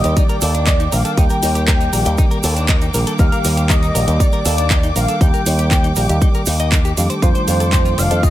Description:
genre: nu-disco, nu disco.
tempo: 119 BPM.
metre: 4/4.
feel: straight.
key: Eb lydian.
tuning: A4 = 439 Hz.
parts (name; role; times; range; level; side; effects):
wide unison lead; melody; 0.0-8.3 s; C5 to G5; -22 LUFS; equal; lush chorus, ping-pong delay.
mellow tine electric piano; accompaniment; 0.0-8.3 s; Eb3 to D5; -22 LUFS; equal; none.
warm symphonic violin section; sustained chords; 0.0-8.3 s; Bb3 to D6; -27 LUFS; left 1 dB; sidechain pumping.
direct-recorded clean electric guitar; riff; 0.0-8.3 s; D4 to Eb5; -27 LUFS; left 3 dB; wide subtle chorus.
picked electric bass with an envelope filter; bass; 0.0-8.2 s; F1 to F2; -18 LUFS; equal; none.
house drum kit; drums; 0.0-8.3 s; handclaps, hi-hat; -23 LUFS; right 1 dB; small room ambience.
cabasa; percussion; 0.0-8.3 s; none; -28 LUFS; right 8 dB; none.
electronic kick drum; drums; 0.2-8.3 s; none; -15 LUFS; equal; small room ambience.
room: digital ambience.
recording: none.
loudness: -13 LUFS.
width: side -14 dB against mid.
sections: 0.0-8.3 A section.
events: none.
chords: 0.0 Ebmaj7; 7.0 F13.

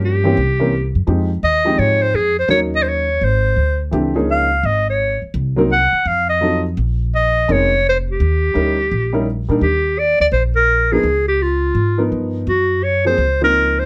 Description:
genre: jazz, small-group swing and bop.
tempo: 169 BPM.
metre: 4/4.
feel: swing 65% on 8ths.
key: unclear.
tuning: A4 = 441 Hz.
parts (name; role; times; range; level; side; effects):
clear clarinet; melody; 0.0-13.9 s; F4 to Gb5; -18 LUFS; equal; none.
warm baby grand piano; accompaniment; 0.0-13.9 s; Fb3 to Bb4; -22 LUFS; equal; none.
upright bass; bass; 0.0-13.9 s; F1 to Bb2; -22 LUFS; equal; none.
room: light reverb.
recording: none.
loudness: -17 LUFS.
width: mono.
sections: 0.0-9.6 A section; 9.6-13.9 B section.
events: none.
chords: 0.4 C7b9; 1.1 Fm9; 2.5 Ebm7; 3.2 Ab; 3.9 Db69; 5.3 Cm7b5; 6.1 F7b9; 6.8 Bbm11; 8.2 Eb7b9; 9.6 Eb; 11.0 Db13; 12.5 Gbmaj7#11.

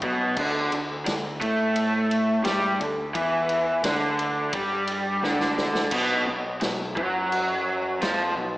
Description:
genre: blues rock power trio and southern rock.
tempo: 86 BPM.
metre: 4/4.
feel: straight.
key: B minor.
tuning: A4 = 440 Hz.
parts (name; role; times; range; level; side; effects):
raw garage guitar; riff; 0.0-8.6 s; B2 to A3; -23 LUFS; equal; overdrive, spring reverb, slapback echo.
fuzz picked electric bass; bass; 0.0-8.6 s; B1 to A2; -34 LUFS; equal; overdrive.
vintage drum kit; drums; 0.0-8.2 s; crash cymbal, kick drum, ride cymbal, snare drum; -31 LUFS; equal; none.
room: wet lush hall reverb, RT60 2.2 s.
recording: big arena sound, small speaker sound.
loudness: -22 LUFS.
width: side -18 dB against mid.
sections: 0.0-5.9 A section; 5.9-8.6 A section.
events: drum fill 5.2-5.9.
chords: 0.4 D5; 5.9 B5.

